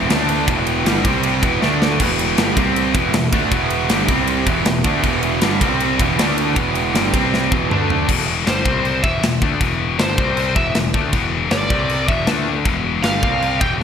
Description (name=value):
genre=heavy metal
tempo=158 BPM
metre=4/4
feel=straight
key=E minor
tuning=A4 = 440 Hz
part: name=dark chamber string section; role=sustained chords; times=0.0-8.1 s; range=B3 to A5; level=-29 LUFS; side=right 2 dB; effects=none
part: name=distorted electric guitar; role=riff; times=0.0-8.1 s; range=E2 to D4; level=-21 LUFS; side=right 11 dB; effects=distortion
part: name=scooped high-gain guitar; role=riff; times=0.0-13.8 s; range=E2 to D4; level=-20 LUFS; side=left 8 dB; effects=distortion
part: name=fuzz picked electric bass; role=bass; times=0.0-13.8 s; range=E1 to D2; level=-23 LUFS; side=equal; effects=overdrive
part: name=tight metal drum kit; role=drums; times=0.1-13.7 s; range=china cymbal, crash cymbal, kick drum, ride cymbal, snare drum, toms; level=-20 LUFS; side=equal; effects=gated reverb
part: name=high-gain lead guitar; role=melody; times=8.5-13.7 s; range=C5 to G5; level=-23 LUFS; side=right 2 dB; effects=distortion, ping-pong delay
room=moderate lush hall reverb, RT60 1.7 s, small room ambience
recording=bright 1980s-style digital production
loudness=-15 LUFS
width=side -7 dB against mid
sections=0.0-8.1 A section; 8.1-13.8 B section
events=drum fill 1.6-2.0, 7.3-8.1; lead electric guitar solo 8.1-13.8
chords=0.1 D5; 0.5 Em; 1.1 C5; 1.4 Em; 1.6 D5; 2.0 Em; 2.6 C5; 3.0 Em; 4.1 C5; 4.5 Em; 5.6 C5; 6.0 Em; 6.2 D5; 6.6 Em; 7.1 C5; 7.5 Em; 7.7 D5; 8.1 Em; 8.7 C5; 9.0 Em; 10.2 C5; 10.6 Em; 11.7 C5; 12.1 E5; 12.3 D5; 12.7 Em; 13.2 C5; 13.6 Em